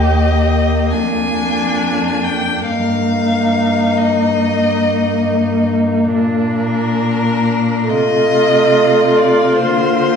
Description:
classical, slow romantic movement for string quartet; 60-73 BPM; 4/4; rubato; Eb major; A4 = 440 Hz
warm violin; melody; 0.0-10.2 s; Bb4 to Ab5; -18 LUFS; left 2 dB
warm violin; second line; 0.0-10.2 s; D4 to G4; -20 LUFS; left 1 dB
warm viola; accompaniment; 0.0-10.2 s; A3 to Bb3; -16 LUFS; left 1 dB
rich cello; bass; 0.0-10.2 s; Eb2 to D3; -20 LUFS; right 2 dB
wet recital hall reverb, RT60 1.4 s; recorded in a church or concert hall, small room reverb; -12 LUFS; side -6 dB against mid
0.0-10.2 A section
0.0 Eb; 0.9 Bb7/F; 2.7 Eb/G; 6.1 Bb; 7.9 F7/C; 9.6 Bb/D

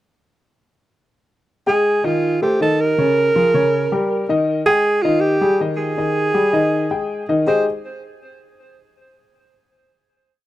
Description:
jazz; 160 BPM; 4/4; straight; Ab major; A4 = 440 Hz
warm alto saxophone; melody; 1.7-7.6 s; F4 to C5; -18 LUFS; right 2 dB; tape echo
warm concert grand piano; accompaniment; 1.7-7.7 s; Db3 to G5; -18 LUFS; left 2 dB
little or no reverb; dry, close 1970s-style studio recording; -15 LUFS; side -14 dB against mid
1.5-7.5 A section; 7.5-9.0 final chord
1.5 Ab5; 2.2 F9/Eb; 3.0 Bbm7; 3.7 Eb7; 4.5 Ab5; 7.5 Abmaj7

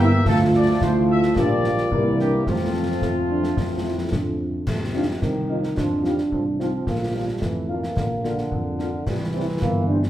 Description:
military-style march for wind band; 109 BPM; 2/4; straight; F major; A4 = 440 Hz
dark trumpet section; melody; 0.0-10.0 s; F4 to F5; -29 LUFS; left 2 dB
warm euphonium; second line; 0.0-10.0 s; G3 to G4; -27 LUFS; right 1 dB
dark French horn section; accompaniment; 0.0-10.0 s; F3 to F4; -26 LUFS; left 3 dB
clear trombone section; sustained chords; 0.0-10.1 s; C3 to Bb3; -28 LUFS; right 2 dB
dark tuba; bass; 0.0-10.1 s; G1 to F2; -24 LUFS; right 1 dB
concert snare drum, clash cymbals and concert bass drum; drums; 0.3-10.1 s; -27 LUFS; left 1 dB
wet large studio reverb, RT60 1.3 s; heard from further back in the room; -20 LUFS; side -13 dB against mid
0.0-4.7 A section; 4.7-10.1 A section
0.3 Dm; 1.4 Gm7/Bb; 1.9 C7; 2.5 F; 4.7 F5; 6.9 Bb; 9.1 C

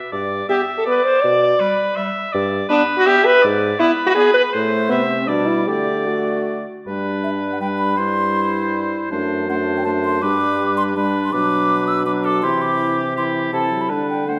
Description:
quick classical-period movement for wind quintet; 162 BPM; 3/4; rubato; G major; A4 = 442 Hz
warm oboe; second line; 0.0-14.4 s; G4 to E5; -26 LUFS; equal
dark bassoon; bass; 0.1-14.4 s; F#2 to D3; -26 LUFS; equal
mellow hollow silver concert flute; melody; 0.5-14.4 s; C5 to E6; -26 LUFS; equal
mellow French horn; accompaniment; 0.5-14.4 s; E3 to D5; -22 LUFS; equal
warm clarinet; accompaniment; 0.5-14.4 s; G3 to E4; -28 LUFS; equal
moderate concert hall reverb, RT60 1.7 s; -18 LUFS; mono
0.0-6.9 A section; 6.9-14.4 B section
0.1 G; 1.2 G/B; 2.3 G; 3.4 G#dim; 4.5 Am; 5.3 G/B; 5.7 D; 6.9 G; 8.0 C/G; 9.1 D7/F#; 10.2 G; 11.3 Bm; 12.4 C; 13.5 Am/C; 13.9 G/D

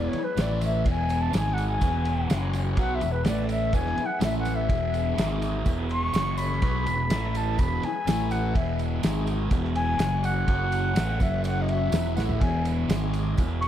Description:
psychedelic rock; 124 BPM; 4/4; straight; E major; A4 = 441 Hz
mellow concert flute; melody; 0.0-13.7 s; B4 to C#6; -30 LUFS; left 2 dB; analog delay
bright tonewheel organ; sustained chords; 0.0-13.7 s; C#3 to G#5; -40 LUFS; right 3 dB; overdrive, chorus vibrato, fast rotary speaker
thick fuzz guitar; riff; 0.0-13.7 s; E2 to B3; -29 LUFS; equal; distortion, phaser
overdriven fingered electric bass; bass; 0.0-13.7 s; E1 to B1; -28 LUFS; equal
cloth-damped thuddy drum kit; drums; 0.1-13.7 s; kick drum, ride cymbal, snare drum, toms; -28 LUFS; equal
tambourine; percussion; 0.1-13.7 s; -48 LUFS; right 11 dB
light reverb, small room ambience; -23 LUFS; side -11 dB against mid
0.0-13.7 A section
flute solo 0.0-13.7; drum fill 12.2
0.4 A5; 0.9 E; 1.3 G#5; 1.8 E; 2.3 F#5; 2.8 E; 3.3 A5; 3.7 E; 4.2 A5; 4.7 E; 5.2 G#5; 5.7 E; 6.1 F#5; 6.6 E; 7.1 A5; 7.6 E; 8.1 A5; 8.6 E; 9.0 G#5; 9.5 E; 10.0 F#5; 11.0 E; 11.2 F#5; 11.9 E; 12.9 G#5

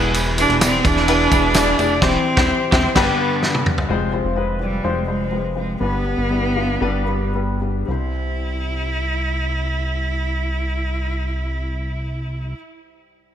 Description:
piano-driven pop; 109-128 BPM; 4/4; straight; C major; A4 = 436 Hz
dark baby grand piano; accompaniment; 0.0-13.3 s; C2 to D5; -22 LUFS; left 4 dB; analog chorus
twelve-string electric guitar; riff; 0.0-3.1 s; G2 to G#4; -26 LUFS; right 6 dB; wide subtle chorus
chorused synth bass; bass; 0.0-12.5 s; E1 to C2; -23 LUFS; equal
loose indie drum kit; drums; 0.1-3.9 s; crash cymbal, kick drum, ride cymbal, snare drum, toms; -19 LUFS; right 1 dB
tambourine; percussion; 0.1-1.9 s; -32 LUFS; right 7 dB
rich cello; melody; 0.4-12.6 s; G3 to E4; -22 LUFS; right 1 dB
moderate lush hall reverb, RT60 1.7 s, small room reverb; bright 1980s-style digital production; -17 LUFS; side -9 dB against mid
0.0-3.9 A section; 3.9-7.9 B section; 7.9-12.3 C section
band accent 2.0-3.9; drum fill 3.4-3.9; slowing down 3.9-7.9
0.0 E; 2.0 C/E; 3.0 G; 3.9 Fm; 5.8 G; 7.9 C

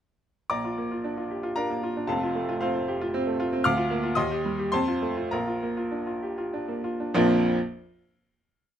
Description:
classical, virtuoso piano study; 96-116 BPM; 3/4; rubato; Bb major; A4 = 444 Hz
bright baby grand piano; solo; 0.5-7.6 s; F1 to F6; -24 LUFS; equal
light reverb; close, detailed microphones; -25 LUFS; side -9 dB against mid
0.5-7.1 A section; 7.1-8.8 final chord
slowing down 2.9-7.1
0.5 Bb; 2.1 F; 3.7 Bb/D; 4.2 Cm/Eb; 4.7 F; 5.3 Bb

